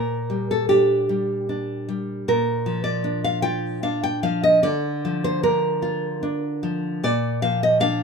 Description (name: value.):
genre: romantic piece for solo classical guitar.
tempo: 75 BPM.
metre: 3/4.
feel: rubato.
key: unclear.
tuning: A4 = 440 Hz.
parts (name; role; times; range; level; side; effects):
nylon-string guitar; solo; 0.0-8.0 s; Bb2 to G5; -20 LUFS; equal; none.
room: moderate studio reverb, RT60 0.7 s.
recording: minimal, uncompressed stereo recording.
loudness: -20 LUFS.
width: side -5 dB against mid.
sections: 0.0-8.0 A section.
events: none.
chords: 0.0 Gm/Bb; 2.3 Bb; 4.6 Bb/D; 7.0 Bb.